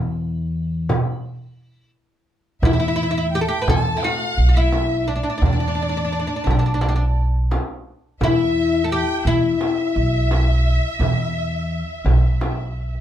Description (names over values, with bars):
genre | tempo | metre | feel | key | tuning
Arabic maqam ensemble | 86 BPM | 4/4 | straight | E maqam bayati | A4 = 440 Hz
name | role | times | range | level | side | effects
oud | melody | 0.0-13.0 s | D4 to B4 | -22 LUFS | left 2 dB | plate reverb
upright bass | bass | 0.0-13.0 s | B1 to E2 | -20 LUFS | equal | none
darbuka | percussion | 0.0-13.0 s | none | -25 LUFS | right 3 dB | none
frame drum | percussion | 0.9-12.6 s | none | -28 LUFS | left 2 dB | none
warm studio violin section | second line | 2.6-13.0 s | D5 to A5 | -27 LUFS | equal | none
room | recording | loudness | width
wet small room reverb, RT60 0.5 s | heard from further back in the room | -17 LUFS | side -11 dB against mid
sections
0.0-2.6 A section; 2.6-13.0 B section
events
break 1.2-2.6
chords
none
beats
0.54 1.24 1.94 | 2.64 3.33 4.03 4.73 | 5.43 6.12 6.82 7.52 | 8.22 8.91 9.61 10.31 | 11.01 11.71 12.41